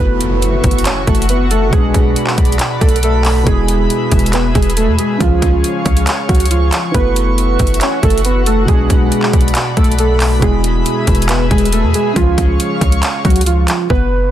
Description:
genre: hip hop, trap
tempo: 138 BPM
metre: 4/4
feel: half-time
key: F# minor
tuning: A4 = 440 Hz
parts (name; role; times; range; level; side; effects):
- warbly lo-fi synth keys; melody; 0.0-14.3 s; E#3 to C#5; -17 LUFS; equal; chorus
- felt-muted upright piano; accompaniment; 0.0-13.9 s; B2 to F#4; -22 LUFS; right 3 dB; none
- airy breathy pad; sustained chords; 0.0-13.9 s; F#4 to C#6; -22 LUFS; left 2 dB; chorus
- clean 808-style bass; bass; 0.0-14.3 s; E1 to E2; -15 LUFS; equal; none
- impact; sound effects; 0.1-1.7 s; none; -25 LUFS; equal; none
- trap drum kit; drums; 0.2-14.0 s; handclaps, hi-hat, kick drum; -16 LUFS; equal; none
room: digital ambience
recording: dense, heavily limited modern master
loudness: -11 LUFS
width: side -11 dB against mid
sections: 0.0-13.9 A section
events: impact 0.0-1.7; hi-hats muted 13.9-14.3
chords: 0.0 F#m7; 1.7 Bm7; 3.5 E; 5.2 C#; 6.9 F#m7; 8.7 Bm7; 10.4 E; 12.2 C#

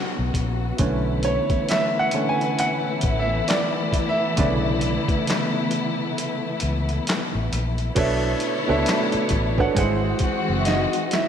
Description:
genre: R&B, neo-soul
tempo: 67 BPM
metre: 4/4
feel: swing 61% on 16ths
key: unclear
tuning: A4 = 440 Hz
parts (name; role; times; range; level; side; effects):
- warm concert grand piano; accompaniment; 0.0-11.3 s; B2 to G#5; -24 LUFS; right 3 dB; none
- warm studio string section; sustained chords; 0.0-11.3 s; C#3 to C#5; -26 LUFS; left 3 dB; none
- vintage muted fingered electric bass; bass; 0.2-10.8 s; F#1 to C#2; -25 LUFS; left 1 dB; none
- boom bap sampler-style drum kit; drums; 0.3-11.3 s; crash cymbal, handclaps, hi-hat, kick drum, snare drum; -26 LUFS; left 1 dB; none
room: wet lush hall reverb, RT60 2.5 s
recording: dreamy mix soaked in reverb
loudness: -20 LUFS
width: side -8 dB against mid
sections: 0.0-8.0 A section; 8.0-11.3 B section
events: grand piano solo 0.0-8.0; break 6.2-8.0; drum fill 10.7-11.3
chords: 0.0 C#m11; 0.8 Bm11; 9.8 G#7b13

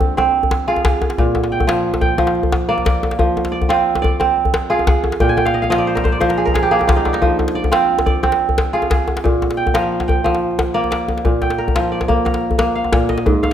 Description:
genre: west african traditional, West African string and xylophone music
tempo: 119 BPM (dotted quarters)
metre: 12/8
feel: straight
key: unclear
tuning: A4 = 440 Hz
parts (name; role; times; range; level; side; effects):
- kora; arpeggios; 0.0-13.5 s; Ab2 to Ab5; -16 LUFS; right 2 dB; none
- djembe; percussion; 0.0-13.5 s; none; -18 LUFS; left 2 dB; none
room: moderate recital hall reverb, RT60 1.4 s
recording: none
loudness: -14 LUFS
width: side -9 dB against mid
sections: 0.0-11.3 A section; 11.3-13.5 B section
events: kora fill 5.2-7.2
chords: 0.0 Fm; 1.2 Bb; 3.2 Fm; 5.2 Bb5; 7.2 Fm; 9.2 Bb

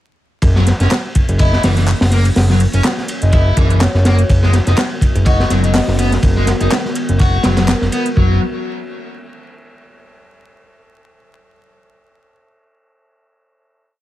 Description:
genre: breakbeat, breaks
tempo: 124 BPM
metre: 4/4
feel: swing 55% on 16ths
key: F# mixolydian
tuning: A4 = 440 Hz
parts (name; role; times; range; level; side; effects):
- warbly tape-like pad; sustained chords; 0.4-8.4 s; D#3 to F#4; -25 LUFS; equal; chorus, built-in reverb, sidechain pumping
- fat analog bass; bass; 0.4-8.4 s; F#1; -13 LUFS; equal; none
- crunchy breakbeat drum kit; drums; 0.4-8.3 s; hi-hat, kick drum, ride cymbal, snare drum; -16 LUFS; equal; none
- garage drum kit; drums; 0.4-8.1 s; handclaps, hi-hat; -25 LUFS; equal; none
- crunchy overdriven guitar; riff; 0.6-8.4 s; E3 to F#4; -21 LUFS; left 1 dB; digital delay
- vibraphone with soft mallets; melody; 1.4-8.2 s; A#4 to D#5; -26 LUFS; left 1 dB; telephone sound, digital delay
room: light reverb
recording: vinyl crackle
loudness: -11 LUFS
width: side -14 dB against mid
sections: 0.4-8.2 drop; 8.2-10.1 final chord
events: drop 0.4-8.2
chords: 0.4 F#7; 4.3 G#m7/F#; 8.2 N.C.

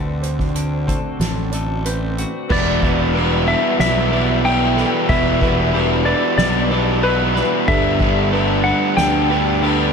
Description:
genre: post-rock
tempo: 93 BPM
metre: 4/4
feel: straight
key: E minor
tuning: A4 = 440 Hz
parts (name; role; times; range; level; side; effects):
- deep dark ambient pad; sustained chords; 0.0-9.9 s; D3 to B5; -31 LUFS; right 2 dB; none
- felt-muted upright piano; arpeggios; 0.0-9.9 s; A4 to D5; -31 LUFS; right 3 dB; none
- twelve-string electric guitar; arpeggios; 0.0-9.9 s; D3 to B4; -28 LUFS; left 4 dB; lush chorus, slapback echo, tape echo
- fuzz fingered electric bass; bass; 0.0-9.9 s; E1 to D2; -21 LUFS; equal; overdrive
- soft-mallet drum kit; drums; 0.2-9.8 s; crash cymbal, hi-hat, kick drum, snare drum; -22 LUFS; equal; none
- clean lap steel guitar; melody; 2.5-9.9 s; B4 to G5; -21 LUFS; left 2 dB; slapback echo, tape echo
- distorted electric guitar; riff; 2.5-9.9 s; E2 to G3; -21 LUFS; right 13 dB; distortion
- raw garage guitar; riff; 2.5-9.9 s; G2 to E4; -22 LUFS; left 12 dB; overdrive, slapback echo
room: light reverb, small room ambience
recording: none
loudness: -15 LUFS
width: side -6 dB against mid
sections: 0.0-2.5 A section; 2.5-9.9 B section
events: none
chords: 0.0 D7; 2.5 Em7; 7.7 Gadd9

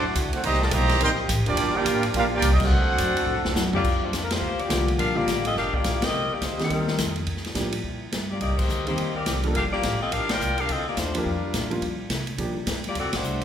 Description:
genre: jazz, big band swing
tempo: 211 BPM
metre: 4/4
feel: swing 62% on 8ths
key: G minor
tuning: A4 = 441 Hz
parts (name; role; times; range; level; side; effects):
- clear trumpet section; melody; 0.0-3.8 s; Bb3 to C6; -24 LUFS; right 2 dB; none
- mellow trombone section; second line; 0.0-3.8 s; Eb3 to G4; -28 LUFS; right 2 dB; none
- muted trombone section; sustained chords; 0.0-3.8 s; D3 to G4; -35 LUFS; left 1 dB; none
- upright bass; bass; 0.0-13.4 s; Eb1 to C3; -27 LUFS; equal; none
- swinging big-band drum kit; drums; 0.2-13.4 s; crash cymbal, hi-hat, kick drum, ride cymbal, snare drum, toms; -29 LUFS; equal; none
- clear saxophone section; melody; 3.7-13.4 s; G3 to G5; -26 LUFS; left 3 dB; none
- warm concert grand piano; accompaniment; 4.7-12.6 s; D3 to A4; -30 LUFS; equal; none
room: wet recital hall reverb, RT60 1.6 s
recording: recorded in a church or concert hall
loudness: -22 LUFS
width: side -9 dB against mid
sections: 0.0-3.8 A section; 3.8-13.4 B section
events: band accent 2.6, 4.3, 6.0, 8.6, 10.3, 13.1; drum fill 3.3-3.8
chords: 0.4 Cm7; 1.6 Gm7; 2.7 D7; 3.8 Gm7; 6.1 Cm7; 7.3 Gm7; 8.4 Cm7; 9.5 Gm7

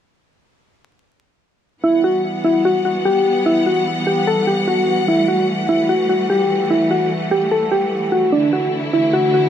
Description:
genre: hip hop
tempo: 148 BPM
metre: 4/4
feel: half-time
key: E minor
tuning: A4 = 440 Hz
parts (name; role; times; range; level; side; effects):
- soft electric-piano-like synth keys; melody; 1.8-9.5 s; D4 to A4; -16 LUFS; equal; chorus, dub echo
- clear symphonic string section; sustained chords; 1.8-9.5 s; D3 to F#5; -21 LUFS; left 1 dB; none
room: light reverb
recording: echo-heavy mix, vinyl crackle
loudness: -15 LUFS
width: side -9 dB against mid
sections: 1.8-9.5 A section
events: none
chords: 1.8 Emadd9; 8.3 Dsus2

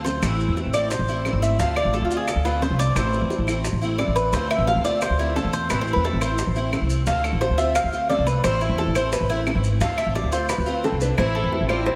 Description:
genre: latin, Cuban son and guajira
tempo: 175 BPM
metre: 4/4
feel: straight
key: A minor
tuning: A4 = 441 Hz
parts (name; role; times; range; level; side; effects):
- picked steel-string acoustic guitar; accompaniment; 0.0-11.9 s; D3 to F4; -31 LUFS; equal; ensemble chorus
- Cuban tres; arpeggios; 0.0-12.0 s; C4 to F5; -26 LUFS; equal; none
- upright bass; bass; 0.0-11.9 s; G#1 to E2; -26 LUFS; equal; none
- bongos; percussion; 0.1-12.0 s; none; -35 LUFS; equal; none
- maracas; percussion; 0.1-11.2 s; none; -41 LUFS; equal; none
- claves; percussion; 0.2-11.9 s; none; -37 LUFS; equal; none
- nylon-string guitar; melody; 10.8-12.0 s; A4 to D5; -27 LUFS; equal; analog delay
- rich studio violin section; second line; 10.8-12.0 s; C4 to F4; -31 LUFS; equal; none
room: wet lush hall reverb, RT60 2.4 s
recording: dreamy mix soaked in reverb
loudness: -22 LUFS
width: mono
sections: 0.2-11.2 A section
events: drum fill 0.0; Cuban tres solo 0.2-11.2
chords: 0.2 Am; 1.6 Dm7; 3.0 Am; 4.3 Dm7; 5.7 Am; 7.1 Dm7; 8.4 Am; 9.8 Dm7; 11.2 Am

